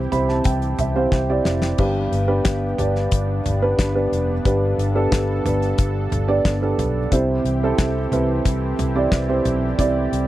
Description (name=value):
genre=piano-driven pop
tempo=90 BPM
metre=4/4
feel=straight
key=C major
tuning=A4 = 439 Hz
part: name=dark upright piano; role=accompaniment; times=0.0-10.3 s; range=G2 to B5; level=-21 LUFS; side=right 2 dB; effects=none
part: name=lush unison pad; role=sustained chords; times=0.0-10.3 s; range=E3 to A4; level=-31 LUFS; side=left 1 dB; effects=chorus
part: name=vintage muted fingered electric bass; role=bass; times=0.0-10.3 s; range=F1 to C2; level=-23 LUFS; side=left 1 dB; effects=none
part: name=damped 70s drum kit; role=drums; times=0.1-10.3 s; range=crash cymbal, hi-hat, kick drum, snare drum, toms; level=-22 LUFS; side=left 1 dB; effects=none
room=light reverb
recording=dry, close 1970s-style studio recording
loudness=-18 LUFS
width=side -15 dB against mid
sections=0.0-10.3 A section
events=upright piano fill 0.0-1.8; drum fill 1.1-1.8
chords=0.0 C; 1.8 G; 7.1 C